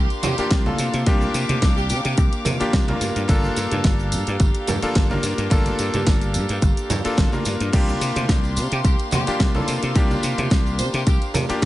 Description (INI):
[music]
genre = nu-disco, nu disco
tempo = 108 BPM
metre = 4/4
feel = swing 54% on 16ths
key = unclear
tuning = A4 = 440 Hz
[part]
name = clear studio violin section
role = melody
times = 0.0-2.1, 8.7-11.2 s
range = G4 to C5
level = -31 LUFS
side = right 1 dB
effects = dub echo
[part]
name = bright electric grand piano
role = accompaniment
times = 0.0-11.7 s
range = Bb3 to Bb4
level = -26 LUFS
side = left 2 dB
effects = digital delay
[part]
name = rich chamber string section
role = sustained chords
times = 0.0-11.7 s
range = Bb3 to D6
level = -30 LUFS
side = equal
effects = sidechain pumping
[part]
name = dry thumbed slap bass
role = bass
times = 0.0-11.7 s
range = G1 to C3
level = -24 LUFS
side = equal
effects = none
[part]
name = pop drum kit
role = drums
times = 0.1-11.7 s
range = crash cymbal, hi-hat, shaker, snare drum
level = -28 LUFS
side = equal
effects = none
[part]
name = tambourine and congas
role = percussion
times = 0.1-11.7 s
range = none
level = -30 LUFS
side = right 3 dB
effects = none
[part]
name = electronic kick drum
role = drums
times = 0.5-11.7 s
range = none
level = -19 LUFS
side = equal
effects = none
[sound]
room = digital ambience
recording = nothing above 11.0 kHz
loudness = -18 LUFS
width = side -16 dB against mid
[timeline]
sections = 0.0-11.7 A section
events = none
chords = 0.0 C7sus4; 3.0 Gm7; 7.7 C7sus4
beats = 0.51 | 1.07 1.62 2.18 2.73 | 3.29 3.85 4.40 4.96 | 5.51 6.07 6.62 7.18 | 7.73 8.29 8.85 9.40 | 9.96 10.51 11.07 11.62